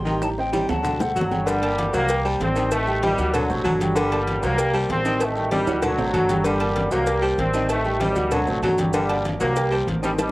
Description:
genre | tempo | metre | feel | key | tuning
latin, salsa | 193 BPM | 4/4 | straight | G harmonic minor | A4 = 440 Hz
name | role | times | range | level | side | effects
breathy mellow jazz flute | melody | 0.0-1.3 s | F#5 to C6 | -30 LUFS | left 2 dB | cassette tape, tape echo
upright bass | bass | 0.0-10.3 s | G1 to D2 | -28 LUFS | equal | none
warm baritone saxophone | second line | 0.1-10.3 s | D3 to G3 | -26 LUFS | left 1 dB | cassette tape, tape echo
clear baby grand piano | accompaniment | 0.1-10.3 s | F#3 to G5 | -28 LUFS | right 1 dB | cassette tape
congas | percussion | 0.1-10.3 s | none | -29 LUFS | equal | none
guiro | percussion | 0.1-10.3 s | none | -41 LUFS | left 2 dB | none
maracas | percussion | 0.1-10.3 s | none | -42 LUFS | right 3 dB | none
timbales and agogo bells | percussion | 0.1-10.3 s | none | -32 LUFS | right 4 dB | none
bongos and cowbell | percussion | 0.2-10.3 s | none | -29 LUFS | left 2 dB | none
claves | percussion | 0.2-10.3 s | none | -38 LUFS | right 2 dB | none
brilliant trombone section | melody | 1.2-10.3 s | D3 to C4 | -24 LUFS | equal | cassette tape
room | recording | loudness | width
moderate booth ambience, RT60 0.3 s | home recording on cassette | -19 LUFS | side -19 dB against mid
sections
0.0-1.5 A section; 1.5-10.3 B section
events
drum fill 0.2-1.5, 5.7-6.5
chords
0.2 Am7b5; 0.8 D7; 1.5 Gm; 2.1 Cm7; 2.7 Am7b5; 3.3 D7; 4.0 Gm; 4.6 Cm7; 5.2 Am7b5; 5.8 D7; 6.5 Gm; 7.1 Cm7; 7.7 Am7b5; 8.3 D7; 8.9 Gm; 9.6 Cm7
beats
| 0.22 0.53 0.85 1.16 | 1.47 1.78 2.09 2.40 | 2.72 3.03 3.34 3.65 | 3.96 4.27 4.58 4.89 | 5.21 5.52 5.83 6.14 | 6.45 6.76 7.07 7.38 | 7.70 8.01 8.32 8.63 | 8.94 9.25 9.56 9.88 | 10.19

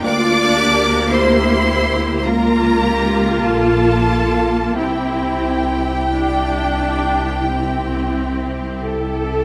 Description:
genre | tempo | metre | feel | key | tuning
classical, slow romantic movement for string orchestra | 44-56 BPM | 4/4 | rubato | unclear | A4 = 440 Hz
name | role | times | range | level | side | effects
rich symphonic violin section | melody | 0.0-9.4 s | G5 to D6 | -24 LUFS | equal | none
bright symphonic violin section | second line | 0.0-9.4 s | G4 to D5 | -26 LUFS | equal | none
clear symphonic viola section | accompaniment | 0.0-9.4 s | Bb3 to A4 | -22 LUFS | equal | none
rich symphonic cello section | bass | 0.0-9.4 s | E4 to G4 | -25 LUFS | equal | none
rich symphonic double bass section | bass | 0.0-9.4 s | Bb1 to D2 | -24 LUFS | equal | none
room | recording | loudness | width
moderate scoring stage reverb, RT60 1.4 s | none | -17 LUFS | mono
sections
0.0-9.4 A section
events
none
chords
0.0 Bb/D; 2.2 Bbm/Db; 4.8 C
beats
| 0.04 1.12 2.25 3.45 | 4.78 6.15 7.52 8.87

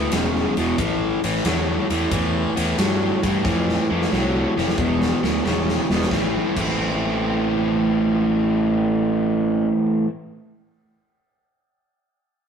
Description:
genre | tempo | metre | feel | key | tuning
blues rock power trio and southern rock | 90 BPM | 4/4 | swing 68% on 8ths | A minor | A4 = 439 Hz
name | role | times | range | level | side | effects
cranked stack guitar | riff | 0.0-10.1 s | E2 to E4 | -20 LUFS | equal | overdrive
fuzz fingered electric bass | bass | 0.0-9.7 s | E1 to G2 | -25 LUFS | equal | overdrive
big rock drum kit | drums | 0.1-6.7 s | crash cymbal, kick drum, ride cymbal, snare drum | -25 LUFS | right 1 dB | none
room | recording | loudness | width
moderate stone room reverb, RT60 1.2 s | rough rehearsal-room recording, tube saturation | -18 LUFS | side -7 dB against mid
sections
0.0-6.1 A section; 6.1-8.8 B section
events
drum fill 3.4-6.1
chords
0.0 E5; 0.8 A5; 4.8 E5; 6.1 Am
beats
0.11 | 0.78 1.44 2.11 2.78 | 3.44 4.11 4.78 5.44 | 6.11 6.78 7.45 8.11

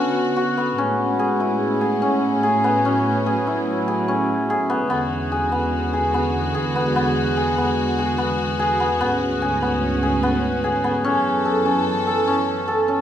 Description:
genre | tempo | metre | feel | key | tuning
contemporary instrumental, chamber music in an uneven meter | 146 BPM | 5/4 | straight | unclear | A4 = 437 Hz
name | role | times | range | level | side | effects
dark studio string section | sustained chords | 0.0-13.0 s | D2 to A4 | -23 LUFS | right 1 dB | none
hammered dulcimer | arpeggios | 0.0-13.0 s | B3 to A4 | -20 LUFS | left 1 dB | none
room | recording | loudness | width
light reverb | close, detailed microphones | -18 LUFS | side -10 dB against mid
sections
0.0-4.9 A section; 4.9-13.0 B section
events
none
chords
0.0 Bmadd9; 0.8 Amaj7; 4.9 E9; 9.0 Bm69/D; 11.1 F#m7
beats
0.37 | 0.79 1.20 1.61 2.02 2.44 | 2.85 3.26 3.67 4.08 4.50 | 4.91 5.32 5.73 6.14 6.55 | 6.96 7.37 7.78 8.19 8.60 | 9.01 9.42 9.83 10.24 10.64 | 11.05 11.46 11.87 12.28 12.68

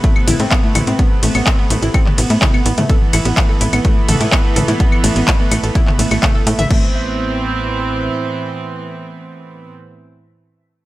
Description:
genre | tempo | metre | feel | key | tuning
melodic techno | 126 BPM | 4/4 | straight | A minor | A4 = 440 Hz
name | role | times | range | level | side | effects
rich studio string section | sustained chords | 0.0-9.7 s | A2 to C4 | -22 LUFS | right 3 dB | sidechain pumping
analog pluck | arpeggios | 0.0-6.9 s | A3 to E5 | -21 LUFS | equal | chorus, sidechain pumping, dub echo
electronic kick drum | drums | 0.0-6.8 s | none | -14 LUFS | equal | none
techno drum kit | drums | 0.0-6.8 s | claves, crash cymbal, handclaps, hi-hat, ride cymbal, toms | -19 LUFS | left 1 dB | sidechain pumping on hats, sidechain pumping on cymbals, sidechain pumping on perc, sidechain pumping on toms
tight sequencer bass | bass | 0.3-8.1 s | A1 to A2 | -18 LUFS | equal | sidechain pumping
room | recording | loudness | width
light reverb | none | -12 LUFS | side -17 dB against mid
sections
0.0-6.7 A section; 6.7-10.5 B section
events
drop 0.0-6.7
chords
0.0 Amadd9; 2.9 Esus4/A; 6.7 Amadd9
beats
0.04 0.51 | 0.99 1.47 1.94 2.42 | 2.90 3.37 3.85 4.32 | 4.80 5.28 5.75 6.23 | 6.70 7.18 7.66 8.13 | 8.61 9.09 9.56

